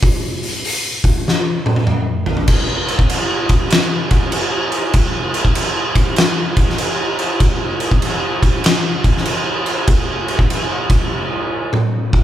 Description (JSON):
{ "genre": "metal", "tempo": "98 BPM", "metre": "4/4", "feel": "swing 65% on 8ths", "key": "none", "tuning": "none", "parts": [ { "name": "oversized low-tuned drum kit", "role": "drums", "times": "0.0-12.2 s", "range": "crash cymbal, hi-hat, kick drum, snare drum, toms", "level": "-14 LUFS", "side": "equal", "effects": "none" } ], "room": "little or no reverb", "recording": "band playing live in one room", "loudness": "-14 LUFS", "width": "side -12 dB against mid", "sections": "0.0-2.5 A section; 2.5-12.2 B section", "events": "drum fill 1.3-2.5, 11.7-12.2", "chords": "none" }